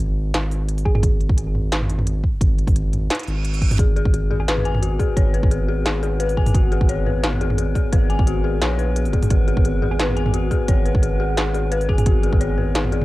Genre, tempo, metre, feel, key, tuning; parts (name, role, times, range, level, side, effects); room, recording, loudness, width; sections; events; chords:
half-time drum and bass; 174 BPM; 4/4; swing 54% on 16ths, half-time; G# minor; A4 = 440 Hz
saturated sub bass; bass; 0.0-13.0 s; G#1 to A#1; -22 LUFS; equal
industrial drum kit; drums; 0.0-13.0 s; hi-hat, snare drum, toms; -24 LUFS; equal; cassette tape
thumb-piano-like synth pluck; melody; 0.9-1.0, 4.4-4.7, 9.9-12.0 s; G#4; -32 LUFS; right 2 dB; chorus, cassette tape, analog delay
electronic kick drum; drums; 0.9-12.4 s; -18 LUFS; equal; cassette tape
reverse cymbal; sound effects; 3.2-3.8 s; -30 LUFS; right 6 dB
dark detuned synth bell; arpeggios; 3.8-13.0 s; F#4 to G#5; -25 LUFS; left 6 dB; chorus, cassette tape, analog delay
metallic inharmonic drone; texture; 4.8-13.0 s; B3; -30 LUFS; right 1 dB; chorus, built-in reverb, phaser, cassette tape
light reverb; home recording on cassette; -17 LUFS; side -18 dB against mid
0.0-13.0 A section
reverse cymbal 3.2-3.8
0.0 G#m